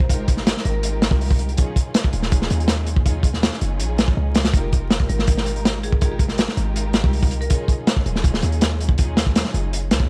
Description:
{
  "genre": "drum and bass, jungle",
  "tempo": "162 BPM",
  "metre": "4/4",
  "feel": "straight",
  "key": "unclear",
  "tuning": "A4 = 441 Hz",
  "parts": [
    { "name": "marimba with hard mallets", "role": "melody", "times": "0.0-0.8, 5.1-7.5 s", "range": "Ab4 to C5", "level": "-36 LUFS", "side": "equal", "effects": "dub echo" },
    { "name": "dark symphonic string section", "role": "sustained chords", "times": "0.0-10.1 s", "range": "Gb3 to Bb4", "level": "-33 LUFS", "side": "equal", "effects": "vintage 12-bit sampler grit" },
    { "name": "warm 808-style bass", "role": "bass", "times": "0.0-10.1 s", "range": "Eb1 to Eb2", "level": "-26 LUFS", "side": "equal", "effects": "tube saturation" },
    { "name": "crunchy breakbeat drum kit", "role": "drums", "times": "0.0-10.1 s", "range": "hi-hat, kick drum, snare drum", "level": "-21 LUFS", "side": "equal", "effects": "none" }
  ],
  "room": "small room reverb",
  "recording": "dry, gritty hardware recording, vinyl crackle",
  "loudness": "-20 LUFS",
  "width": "mono",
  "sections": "0.0-10.1 A section",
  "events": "none",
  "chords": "0.0 Fm11; 1.6 Ebm11; 4.5 Fm11; 7.5 Ebm11"
}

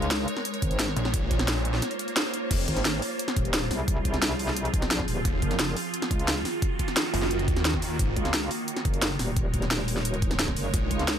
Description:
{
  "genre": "dark technical drum and bass",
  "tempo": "175 BPM",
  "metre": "4/4",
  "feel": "straight",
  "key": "F phrygian",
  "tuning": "A4 = 440 Hz",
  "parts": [
    { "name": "swarming drone", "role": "sustained chords", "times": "0.0-11.2 s", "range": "Eb3 to Db5", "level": "-31 LUFS", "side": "right 2 dB", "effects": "built-in reverb, sidechain pumping" },
    { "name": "metallic wobble bass", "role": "bass", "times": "0.0-11.2 s", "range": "Eb1 to Db2", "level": "-29 LUFS", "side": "equal", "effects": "chorus" },
    { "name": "drum and bass drum kit", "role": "drums", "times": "0.0-11.1 s", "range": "crash cymbal, hi-hat, snare drum", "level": "-28 LUFS", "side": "equal", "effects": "overdrive" },
    { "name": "electronic kick drum", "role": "drums", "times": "0.6-11.0 s", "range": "none", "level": "-28 LUFS", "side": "equal", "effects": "overdrive" },
    { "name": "snarling distorted saw bass", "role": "bass", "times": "1.0-2.7, 5.3-8.2, 10.7-10.9 s", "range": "Eb1 to Eb2", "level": "-28 LUFS", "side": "equal", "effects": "distortion, overdrive" }
  ],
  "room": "little or no reverb",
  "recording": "none",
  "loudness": "-24 LUFS",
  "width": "side -9 dB against mid",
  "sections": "0.0-2.5 A section; 2.5-11.2 A section",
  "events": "drop 0.0-2.5, 2.5-11.2; break 1.8-2.5; band accent 2.2",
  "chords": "0.0 Bbm7; 2.5 Fm; 5.3 Ebm; 8.0 Absus4"
}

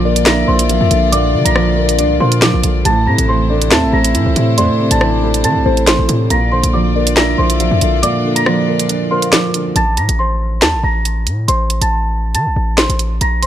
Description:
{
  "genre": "hip hop, drill",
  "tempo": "139 BPM",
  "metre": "4/4",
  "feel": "half-time",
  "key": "A phrygian",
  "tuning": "A4 = 445 Hz",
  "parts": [
    { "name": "small celesta", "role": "melody", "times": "0.0-13.5 s", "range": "C5 to Bb6", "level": "-19 LUFS", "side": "right 1 dB", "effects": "none" },
    { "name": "soft octave-layered synth lead", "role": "second line", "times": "0.0-9.3 s", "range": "C5 to F5", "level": "-21 LUFS", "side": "left 4 dB", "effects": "chorus, phaser, ping-pong delay" },
    { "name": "felt-muted upright piano", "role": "accompaniment", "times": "0.0-9.8 s", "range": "A2 to D4", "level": "-17 LUFS", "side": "right 2 dB", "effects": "none" },
    { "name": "warm studio string section", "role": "sustained chords", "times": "0.0-9.7 s", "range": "A3 to D5", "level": "-23 LUFS", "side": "equal", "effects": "none" },
    { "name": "hard-hitting 808-style bass", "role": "bass", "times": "0.0-13.5 s", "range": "A1 to E3", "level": "-16 LUFS", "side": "equal", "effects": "none" },
    { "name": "drill drum kit", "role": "drums", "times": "0.2-13.5 s", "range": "handclaps, hi-hat, rim click, snare drum", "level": "-15 LUFS", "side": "right 1 dB", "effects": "none" }
  ],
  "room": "light reverb, small room ambience",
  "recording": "none",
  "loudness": "-11 LUFS",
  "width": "side -11 dB against mid",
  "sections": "0.0-9.8 A section; 9.8-13.5 B section",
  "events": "kick muted 8.0-9.8",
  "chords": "0.0 Bb; 2.9 Am; 6.3 Bb; 9.8 Am"
}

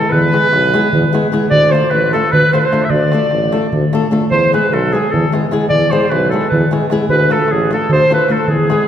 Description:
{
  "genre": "balkan folk, Balkan wedding band",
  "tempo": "301 BPM (eighths)",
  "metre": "7/8",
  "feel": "straight",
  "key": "unclear",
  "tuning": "A4 = 444 Hz",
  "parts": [
    { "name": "clear clarinet", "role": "melody", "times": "0.0-8.9 s", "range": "G#4 to E5", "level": "-15 LUFS", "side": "right 1 dB", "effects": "none" },
    { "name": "mellow trumpet", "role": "second line", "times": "0.0-8.9 s", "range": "G#4 to E5", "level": "-21 LUFS", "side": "equal", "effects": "none" },
    { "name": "flamenco guitar", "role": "accompaniment", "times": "0.0-8.8 s", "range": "G#3 to A4", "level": "-18 LUFS", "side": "left 2 dB", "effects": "none" },
    { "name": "warm tuba", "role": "bass", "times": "0.1-8.7 s", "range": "A1 to E2", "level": "-19 LUFS", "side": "right 1 dB", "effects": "none" },
    { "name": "darbuka", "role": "percussion", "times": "0.1-8.8 s", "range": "none", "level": "-18 LUFS", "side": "left 1 dB", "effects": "none" }
  ],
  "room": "wet concert hall reverb, RT60 2.2 s",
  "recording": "recorded in a church or concert hall",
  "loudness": "-11 LUFS",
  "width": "side -9 dB against mid",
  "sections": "0.0-8.9 A section",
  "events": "none",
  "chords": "0.0 E; 1.5 Dm; 4.3 E; 7.1 Dm"
}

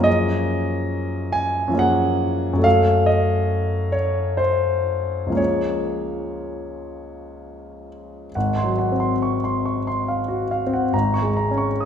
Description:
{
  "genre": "classical, impressionist solo piano",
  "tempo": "58-72 BPM",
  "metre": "3/4",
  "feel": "rubato",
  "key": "Db major",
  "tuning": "A4 = 440 Hz",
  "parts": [
    { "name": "clear grand piano", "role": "solo", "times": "0.0-11.9 s", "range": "Ab1 to Eb6", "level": "-19 LUFS", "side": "equal", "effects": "none" }
  ],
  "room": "wet recital hall reverb, RT60 1.7 s",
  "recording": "recorded in a church or concert hall",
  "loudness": "-19 LUFS",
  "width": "side -8 dB against mid",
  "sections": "0.0-8.3 A section; 8.3-11.9 B section",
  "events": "none",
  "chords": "0.1 Ebm11/Gb; 2.7 Gbm6; 5.4 Db6; 8.3 Ab6; 10.9 Db5/Ab"
}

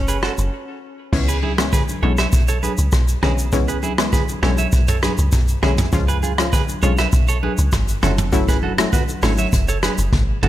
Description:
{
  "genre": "afrobeats",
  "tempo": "100 BPM",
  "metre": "4/4",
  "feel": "straight",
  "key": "C# minor",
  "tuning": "A4 = 438 Hz",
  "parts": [
    { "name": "clear tenor saxophone", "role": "melody", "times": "0.0-0.8 s", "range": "C#4", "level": "-32 LUFS", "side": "equal", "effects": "ping-pong delay" },
    { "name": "deep log drum bass", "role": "bass", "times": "0.0-10.5 s", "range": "F#1 to C#2", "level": "-20 LUFS", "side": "equal", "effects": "none" },
    { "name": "clean electric guitar", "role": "riff", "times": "0.1-10.5 s", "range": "E4 to E5", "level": "-25 LUFS", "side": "right 7 dB", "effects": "spring reverb, ping-pong delay" },
    { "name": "vintage brush drum kit", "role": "drums", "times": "0.1-10.5 s", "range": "crash cymbal, hi-hat, kick drum, rim click, shaker, toms", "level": "-20 LUFS", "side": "equal", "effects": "none" },
    { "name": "analog pluck", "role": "accompaniment", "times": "1.1-9.4 s", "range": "E3 to E#4", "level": "-24 LUFS", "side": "left 2 dB", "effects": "chorus" },
    { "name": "congas", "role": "percussion", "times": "1.4-10.5 s", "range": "none", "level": "-27 LUFS", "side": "left 2 dB", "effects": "none" }
  ],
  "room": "small room ambience",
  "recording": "none",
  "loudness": "-16 LUFS",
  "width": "side -13 dB against mid",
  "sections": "0.0-1.1 A section; 1.1-10.5 B section",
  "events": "break 0.5-1.1; drum fill 10.1-10.5",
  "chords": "0.0 F#5; 1.1 C#m7; 5.9 C#; 8.0 F#m7"
}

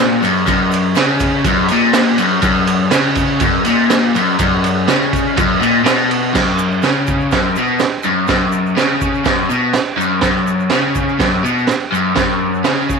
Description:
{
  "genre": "garage rock duo or trio",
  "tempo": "123 BPM",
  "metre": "4/4",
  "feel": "straight",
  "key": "F# major",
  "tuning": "A4 = 441 Hz",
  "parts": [
    { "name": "overdriven electric guitar", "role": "riff", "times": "0.0-13.0 s", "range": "F#2 to C#3", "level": "-14 LUFS", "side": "left 2 dB", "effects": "none" },
    { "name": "raw garage drum kit", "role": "drums", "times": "0.2-13.0 s", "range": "crash cymbal, kick drum, ride cymbal, snare drum", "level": "-17 LUFS", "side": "right 5 dB", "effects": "none" },
    { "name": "egg shaker", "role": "percussion", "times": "0.2-13.0 s", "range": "none", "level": "-37 LUFS", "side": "left 18 dB", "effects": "none" }
  ],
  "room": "moderate spring reverb, RT60 1.7 s",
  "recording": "1960s-style stereo",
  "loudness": "-12 LUFS",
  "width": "side -5 dB against mid",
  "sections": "0.0-6.3 A section; 6.3-13.0 B section",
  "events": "none",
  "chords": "none"
}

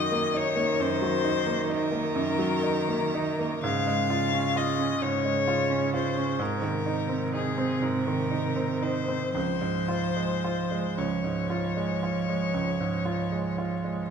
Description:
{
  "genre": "classical, slow romantic movement for piano trio",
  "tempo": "36-44 BPM (dotted quarters)",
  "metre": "12/8",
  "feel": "rubato",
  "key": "Db major",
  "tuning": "A4 = 438 Hz",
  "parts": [
    { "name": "warm violin", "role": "melody", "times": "0.0-14.1 s", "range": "Ab4 to F5", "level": "-30 LUFS", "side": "left 7 dB", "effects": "none" },
    { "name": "rich cello", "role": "second line", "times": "0.0-14.1 s", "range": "C3 to F3", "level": "-30 LUFS", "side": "right 5 dB", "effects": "none" },
    { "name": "bright baby grand piano", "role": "accompaniment", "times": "0.0-14.1 s", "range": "Db2 to F4", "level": "-29 LUFS", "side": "right 2 dB", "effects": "none" }
  ],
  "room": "wet recital hall reverb, RT60 1.6 s",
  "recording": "none",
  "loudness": "-25 LUFS",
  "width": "side -7 dB against mid",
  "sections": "0.0-14.1 A section",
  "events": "none",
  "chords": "0.0 Ebm/Gb; 3.7 Db/Ab; 6.4 Ab; 9.3 Db"
}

